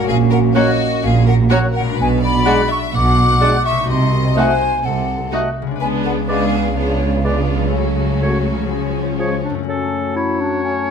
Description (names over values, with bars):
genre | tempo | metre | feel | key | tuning
cinematic, playful, whimsical film cue | 126 BPM | 4/4 | straight | F# minor | A4 = 440 Hz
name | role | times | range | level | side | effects
clear chamber violin section | second line | 0.0-9.4 s | E#4 to F#5 | -25 LUFS | left 5 dB | none
mellow hollow silver concert flute | second line | 0.0-10.9 s | C#5 to D6 | -22 LUFS | left 1 dB | none
dark French horn section | sustained chords | 0.0-10.9 s | G#3 to Gb4 | -27 LUFS | left 3 dB | none
concert harp | arpeggios | 0.0-10.9 s | F#2 to B4 | -24 LUFS | left 10 dB | none
rich studio double bass section | bass | 0.1-9.4 s | A#1 to C#2 | -20 LUFS | right 4 dB | none
warm symphonic cello section | bass | 0.1-9.4 s | A#2 to C#3 | -21 LUFS | right 3 dB | none
warm clarinet | second line | 0.5-10.9 s | C#4 to Eb5 | -26 LUFS | left 2 dB | none
rich chamber violin section | melody | 0.6-9.5 s | C#4 to F#4 | -27 LUFS | left 2 dB | none
warm oboe | second line | 0.6-10.9 s | A4 to F#5 | -26 LUFS | left 1 dB | none
bright studio viola section | accompaniment | 0.6-9.5 s | E#3 to Eb4 | -24 LUFS | right 1 dB | none
mellow bassoon | accompaniment | 0.6-10.9 s | E#3 to A3 | -25 LUFS | right 2 dB | none
room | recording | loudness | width
moderate recital hall reverb, RT60 1.4 s | none | -14 LUFS | side -7 dB against mid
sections
0.0-9.7 A section; 9.7-10.9 B section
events
none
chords
0.1 F#/A#; 2.0 G#m7b5/B; 3.9 Cdim7; 5.8 C#7b9; 7.7 F#m/C#; 8.7 C#; 9.7 F#m